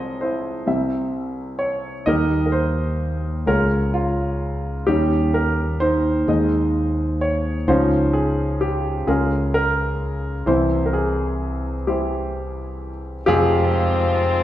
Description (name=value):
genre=acoustic folk-pop ballad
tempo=43 BPM (dotted quarters)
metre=6/8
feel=straight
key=F minor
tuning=A4 = 440 Hz
part: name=warm concert grand piano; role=melody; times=0.0-14.4 s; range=F1 to E5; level=-20 LUFS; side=equal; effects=none
part: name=mellow fretless electric bass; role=bass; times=2.1-14.4 s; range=C2 to F2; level=-24 LUFS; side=equal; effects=none
part: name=stopped French horn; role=second line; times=13.3-14.4 s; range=C4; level=-22 LUFS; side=left 3 dB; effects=none
part: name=warm chamber string section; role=sustained chords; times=13.3-14.4 s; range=Ab3 to F4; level=-28 LUFS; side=right 1 dB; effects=none
room=wet recital hall reverb, RT60 1.4 s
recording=recorded in a church or concert hall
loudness=-18 LUFS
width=side -13 dB against mid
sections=0.0-13.3 A section; 13.3-14.4 B section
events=none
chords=0.0 Fm/C; 0.7 C; 2.1 Eb; 3.5 Db; 4.9 Eb7; 7.7 Dbadd9; 10.5 C; 13.3 Fmadd9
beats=0.67 | 2.07 3.48 | 4.88 6.28 | 7.68 9.08 | 10.48 11.88 | 13.28